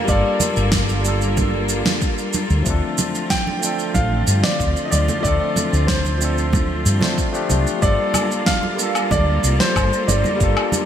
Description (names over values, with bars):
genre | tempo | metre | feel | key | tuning
sunset chillout | 93 BPM | 4/4 | straight | G minor | A4 = 443 Hz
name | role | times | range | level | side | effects
warm grand piano | melody | 0.0-10.9 s | C5 to G5 | -24 LUFS | right 1 dB | digital delay, shimmer reverb
barky tine electric piano | accompaniment | 0.0-10.9 s | F3 to C5 | -24 LUFS | moving between left 6 dB and right 5 dB | auto-pan, digital delay, shimmer reverb
rich studio string section | sustained chords | 0.0-10.9 s | D3 to A4 | -26 LUFS | left 2 dB | shimmer reverb
woody fretless electric bass | bass | 0.1-10.5 s | G1 to G2 | -20 LUFS | equal | none
electronic kick drum | drums | 0.1-10.5 s | none | -22 LUFS | equal | none
electronic shaker, snare drum and woodblock | drums | 0.1-10.9 s | none | -23 LUFS | right 1 dB | gated reverb
congas | percussion | 0.4-10.9 s | none | -26 LUFS | right 3 dB | none
room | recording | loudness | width
moderate lush hall reverb, RT60 2.6 s | bright 1980s-style digital production | -16 LUFS | side -9 dB against mid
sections
0.0-10.9 A section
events
none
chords
0.0 Gm9; 2.7 Dm7; 7.8 Gm9